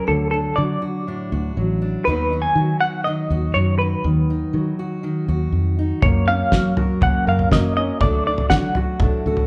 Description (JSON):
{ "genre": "indie folk with a building arrangement", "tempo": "121 BPM", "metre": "4/4", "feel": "straight", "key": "unclear", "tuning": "A4 = 440 Hz", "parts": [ { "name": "semi-hollow electric guitar", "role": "melody", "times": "0.0-9.5 s", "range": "A4 to G#5", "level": "-24 LUFS", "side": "equal", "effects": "tremolo" }, { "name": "fingerpicked steel-string acoustic guitar", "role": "accompaniment", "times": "0.0-9.5 s", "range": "F#2 to A#4", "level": "-26 LUFS", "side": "equal", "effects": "none" }, { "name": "fingered electric bass", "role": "bass", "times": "0.1-9.4 s", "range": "A1 to F#3", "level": "-24 LUFS", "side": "equal", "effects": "none" }, { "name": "warm upright piano", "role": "arpeggios", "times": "6.0-9.5 s", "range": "A3 to A#4", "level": "-28 LUFS", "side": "equal", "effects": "none" }, { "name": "cloth-damped thuddy drum kit", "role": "drums", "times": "6.0-9.5 s", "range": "kick drum, snare drum, toms", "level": "-22 LUFS", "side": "equal", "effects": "none" } ], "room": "moderate large studio reverb, RT60 0.9 s", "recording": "band playing live in one room", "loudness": "-20 LUFS", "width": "mono", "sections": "0.0-9.5 A section", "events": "none", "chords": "0.1 D; 2.1 B/D#; 6.0 F#; 8.0 D" }